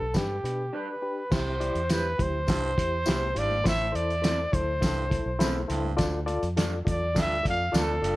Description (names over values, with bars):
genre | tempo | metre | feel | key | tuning
uptempo 1960s-style soul | 103 BPM | 4/4 | straight | C major | A4 = 443 Hz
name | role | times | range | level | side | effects
breathy trumpet | melody | 0.0-8.2 s | G4 to F5 | -29 LUFS | equal | tape echo
reed electric piano | accompaniment | 0.0-8.2 s | D4 to D5 | -33 LUFS | left 2 dB | overdrive, fast tremolo
vintage muted fingered electric bass | bass | 0.0-8.2 s | F#1 to B2 | -31 LUFS | equal | none
cloth-damped thuddy drum kit | drums | 0.1-8.2 s | crash cymbal, hi-hat, kick drum, snare drum | -28 LUFS | equal | none
tambourine | percussion | 0.1-7.9 s | none | -40 LUFS | left 4 dB | none
electric guitar through a small old amp | stabs | 0.7-7.9 s | C4 to C5 | -35 LUFS | right 3 dB | warbly pitch drift
raspy baritone saxophone | riff | 1.3-8.2 s | D2 to C3 | -36 LUFS | right 4 dB | none
congas | percussion | 1.6-7.9 s | none | -43 LUFS | left 4 dB | none
room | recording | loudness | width
light reverb | dark, warm production | -24 LUFS | side -18 dB against mid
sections
0.0-1.3 A section; 1.3-8.2 B section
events
break 0.7-1.3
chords
0.0 G; 1.3 C; 3.7 Am; 6.0 Dm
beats
0.15 0.74 | 1.32 1.91 2.49 3.07 | 3.66 4.24 4.83 5.41 | 5.99 6.58 7.16 7.75